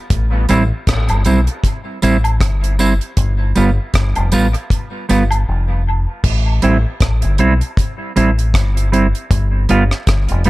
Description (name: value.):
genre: dub reggae.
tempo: 78 BPM.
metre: 4/4.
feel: swing 57% on 16ths.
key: A minor.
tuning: A4 = 439 Hz.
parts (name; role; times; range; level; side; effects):
deep dub fingered electric bass; bass; 0.1-10.5 s; F1 to B1; -15 LUFS; equal; none.
deep reggae drum kit; drums; 0.1-10.5 s; crash cymbal, hi-hat, kick drum, rim click; -18 LUFS; equal; none.
mellow electric guitar; accompaniment; 0.5-10.5 s; G3 to F4; -18 LUFS; right 3 dB; dub echo.
tambourine and woodblock; percussion; 0.5-5.5 s; none; -27 LUFS; equal; dub echo.
room: small room ambience.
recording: none.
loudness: -13 LUFS.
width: side -18 dB against mid.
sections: 0.0-6.2 A section; 6.2-10.5 A section.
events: drums muted 5.5-6.2; part muted 6.2-10.5.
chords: 0.1 Am7; 3.2 G7; 6.2 Am7; 9.3 G7.